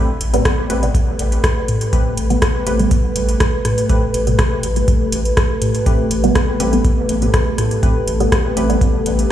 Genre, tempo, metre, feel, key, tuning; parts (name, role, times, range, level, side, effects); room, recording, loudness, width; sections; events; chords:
dub techno; 122 BPM; 4/4; straight; A4 = 442 Hz
dark analog pad; sustained chords; 0.3-9.3 s; A3 to B4; -22 LUFS; left 1 dB; chorus, sidechain pumping
wavetable chord stab; riff; 0.0-8.8 s; A3 to B4; -26 LUFS; left 1 dB; sidechain pumping, dub echo
soft dub sub bass; bass; 0.2-9.2 s; A1 to A2; -19 LUFS; equal; sidechain pumping
booming analog drum machine; drums; 0.2-9.3 s; hi-hat, rim click; -23 LUFS; equal; overdrive, dub echo
filtered dub chord stab; stabs; 0.3-8.9 s; A2 to B3; -22 LUFS; right 2 dB; phaser, sidechain pumping, dub echo
electronic kick drum; drums; 0.5-8.9 s; -17 LUFS; equal; overdrive
light reverb, digital ambience; played on a big sound system in a bare room, large studio reverb; -14 LUFS; side -11 dB against mid
0.0-9.3 A section
0.0 Am9